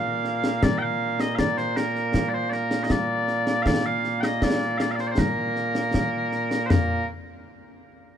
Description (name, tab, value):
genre	scottish traditional, Scottish pipe music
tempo	79 BPM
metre	2/4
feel	straight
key	Bb major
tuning	A4 = 440 Hz
part	mellow small bagpipes	melody	0.0-7.1 s	Bb2 to G5	-24 LUFS	right 1 dB	none
part	concert snare drum, concert bass drum and concert toms	drums	0.2-6.9 s	none	-26 LUFS	left 1 dB	none
room	light reverb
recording	dark, warm production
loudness	-22 LUFS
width	side -9 dB against mid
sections	0.0-6.7 A section; 6.7-8.2 B section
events	none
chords	none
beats	| 0.62 1.38 | 2.14 2.90 | 3.66 4.42 | 5.18 5.94 | 6.70